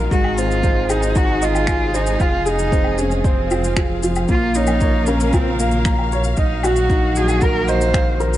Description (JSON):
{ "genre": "piano and strings electronica", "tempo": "115 BPM", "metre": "4/4", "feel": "straight", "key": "Bb minor", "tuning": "A4 = 440 Hz", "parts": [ { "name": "dark chamber string section", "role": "sustained chords", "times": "0.0-8.4 s", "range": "C3 to F5", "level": "-26 LUFS", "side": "left 1 dB", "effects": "shimmer reverb" }, { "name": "dark upright piano", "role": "riff", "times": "0.0-8.4 s", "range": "Ab3 to Bb5", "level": "-21 LUFS", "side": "equal", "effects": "shimmer reverb" }, { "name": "round analog bass", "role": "bass", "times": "0.0-8.4 s", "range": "F1 to Bb1", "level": "-22 LUFS", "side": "equal", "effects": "sidechain pumping" }, { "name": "dark cello", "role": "melody", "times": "0.1-8.2 s", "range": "Bb3 to C5", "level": "-22 LUFS", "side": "right 1 dB", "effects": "shimmer reverb" }, { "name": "electronic kick drum", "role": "drums", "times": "0.1-8.0 s", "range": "none", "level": "-19 LUFS", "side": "equal", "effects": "none" }, { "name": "shaker, woodblock and finger snaps", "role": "drums", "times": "0.1-8.4 s", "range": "none", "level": "-28 LUFS", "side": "left 2 dB", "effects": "none" } ], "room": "light reverb, small room ambience", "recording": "nothing above 10.9 kHz", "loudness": "-15 LUFS", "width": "side -14 dB against mid", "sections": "0.0-8.4 A section", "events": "none", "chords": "0.1 Ab; 2.2 Fm; 4.3 Bbm; 6.4 Ebmadd9/Bb", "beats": "| 0.12 0.64 1.16 1.68 | 2.20 2.73 3.25 3.77 | 4.29 4.81 5.33 5.86 | 6.38 6.90 7.42 7.94" }